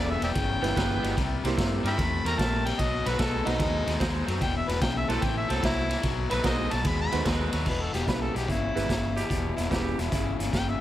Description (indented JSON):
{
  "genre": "electric blues shuffle",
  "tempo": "148 BPM",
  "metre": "4/4",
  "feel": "swing 67% on 8ths",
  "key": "E harmonic minor",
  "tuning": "A4 = 440 Hz",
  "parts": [
    { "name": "overdriven harmonica", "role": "melody", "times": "0.0-10.8 s", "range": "D#4 to B5", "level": "-31 LUFS", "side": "left 1 dB", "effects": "digital delay" },
    { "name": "crunchy overdriven guitar", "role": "riff", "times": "0.0-10.8 s", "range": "E2 to A3", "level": "-32 LUFS", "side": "left 7 dB", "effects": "none" },
    { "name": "clear saxophone section", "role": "stabs", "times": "0.0-7.7 s", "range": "B3 to C5", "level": "-38 LUFS", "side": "right 5 dB", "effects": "none" },
    { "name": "vintage muted fingered electric bass", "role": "bass", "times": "0.0-10.7 s", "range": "E1 to G2", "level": "-31 LUFS", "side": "right 1 dB", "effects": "none" },
    { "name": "raw garage drum kit", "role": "drums", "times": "0.2-10.7 s", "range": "crash cymbal, hi-hat, kick drum, ride cymbal, snare drum", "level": "-29 LUFS", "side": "right 1 dB", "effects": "none" },
    { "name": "bright upright piano", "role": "accompaniment", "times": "0.6-10.0 s", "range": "G3 to C5", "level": "-36 LUFS", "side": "right 6 dB", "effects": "none" },
    { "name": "growling tenor saxophone", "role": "second line", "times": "9.2-10.4 s", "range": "E4 to G4", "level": "-35 LUFS", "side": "right 3 dB", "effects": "none" }
  ],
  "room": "studio ambience",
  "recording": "none",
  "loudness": "-24 LUFS",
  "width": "side -13 dB against mid",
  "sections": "0.0-7.7 A section; 7.7-10.8 B section",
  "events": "harmonica solo 0.0-7.7",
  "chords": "0.0 Em; 1.2 C7; 2.8 B7b9; 4.4 Em; 5.2 Am; 6.0 B7b9; 7.7 Em"
}